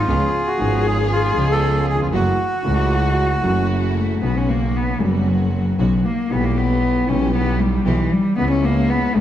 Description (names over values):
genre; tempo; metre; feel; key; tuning
tango; 116 BPM; 4/4; rubato; F# minor; A4 = 441 Hz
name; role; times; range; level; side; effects
bandoneon; melody; 0.0-3.7 s; E#4 to A4; -22 LUFS; right 1 dB; none
warm cello; second line; 0.0-9.2 s; E3 to G#4; -20 LUFS; left 2 dB; none
warm concert grand piano; accompaniment; 0.0-9.2 s; F#1 to G#4; -23 LUFS; left 1 dB; none
rich studio string section; stabs; 0.0-9.2 s; A3 to G4; -32 LUFS; right 2 dB; none
bright double bass; bass; 0.0-9.2 s; F#1 to C#2; -21 LUFS; right 1 dB; none
room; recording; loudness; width
moderate scoring stage reverb, RT60 1.5 s; dark, warm production, nothing above 10.7 kHz; -16 LUFS; side -11 dB against mid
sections
0.0-4.2 A section; 4.2-9.2 B section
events
cello solo 4.2-9.2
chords
0.1 C#7; 2.1 F#m7; 4.2 Bsus2; 6.3 Em/B; 8.4 C#m7